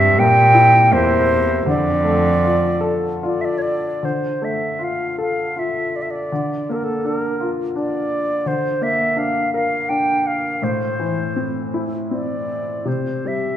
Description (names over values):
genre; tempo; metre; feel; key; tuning
celtic folk, Celtic slow air; 71-86 BPM; 3/4; rubato; D minor; A4 = 441 Hz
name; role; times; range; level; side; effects
mellow wooden flute; melody; 0.0-13.6 s; A4 to G5; -19 LUFS; equal; none
rich cello; second line; 0.0-3.2 s; E2 to Bb2; -19 LUFS; right 2 dB; none
clear upright piano; accompaniment; 0.0-13.6 s; A2 to Bb4; -22 LUFS; left 2 dB; none
room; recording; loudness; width
wet scoring stage reverb, RT60 1.9 s; recorded in a church or concert hall; -16 LUFS; side -11 dB against mid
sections
0.0-4.0 A section; 4.0-13.6 A section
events
none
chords
0.0 C7; 1.7 Dm; 6.3 Bb/D; 10.6 Am; 12.9 C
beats
0.18 0.92 | 1.67 2.43 3.23 | 4.04 4.80 5.56 | 6.31 7.04 7.75 | 8.46 9.16 9.88 | 10.61 11.35 12.10 | 12.87